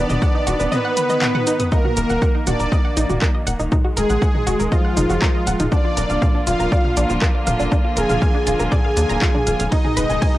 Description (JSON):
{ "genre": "melodic techno", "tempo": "120 BPM", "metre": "4/4", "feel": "straight", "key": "Eb harmonic minor", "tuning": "A4 = 441 Hz", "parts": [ { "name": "expressive synth lead", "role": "melody", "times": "0.0-10.4 s", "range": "F3 to Ab4", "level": "-24 LUFS", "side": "equal", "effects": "ensemble chorus, sidechain pumping, analog delay" }, { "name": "soft supersaw", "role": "second line", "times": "0.0-10.4 s", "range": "F4 to Ab5", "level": "-25 LUFS", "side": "equal", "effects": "sidechain pumping, cassette tape, analog delay" }, { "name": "rich chamber string section", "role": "sustained chords", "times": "0.0-10.4 s", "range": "Cb3 to F4", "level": "-25 LUFS", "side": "equal", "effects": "sidechain pumping, cassette tape" }, { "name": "wide unison pluck", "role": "arpeggios", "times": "0.0-10.4 s", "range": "D4 to Bb6", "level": "-26 LUFS", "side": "right 1 dB", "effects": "sidechain pumping, cassette tape, analog delay" }, { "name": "tight sequencer bass", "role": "bass", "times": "0.0-10.2 s", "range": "D#1 to Eb2", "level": "-22 LUFS", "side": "equal", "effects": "sidechain pumping" }, { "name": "punchy analog drum machine", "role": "drums", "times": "0.1-10.3 s", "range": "handclaps, hi-hat, ride cymbal, shaker, toms", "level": "-25 LUFS", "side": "equal", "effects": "sidechain pumping on perc, sidechain pumping on toms, sidechain pumping on hats, sidechain pumping on cymbals" }, { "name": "electronic kick drum", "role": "drums", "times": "0.2-10.3 s", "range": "none", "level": "-18 LUFS", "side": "equal", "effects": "none" }, { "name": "swell", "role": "sound effects", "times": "0.9-1.7 s", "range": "none", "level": "-32 LUFS", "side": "left 5 dB", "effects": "none" } ], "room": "light reverb", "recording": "home recording on cassette", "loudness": "-16 LUFS", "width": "side -15 dB against mid", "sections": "0.0-10.4 A section", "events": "swell 0.9-1.7; drum fill 1.0-1.7", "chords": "0.0 B/D#; 1.7 Ebm; 5.7 Bb/Eb; 9.7 Abm" }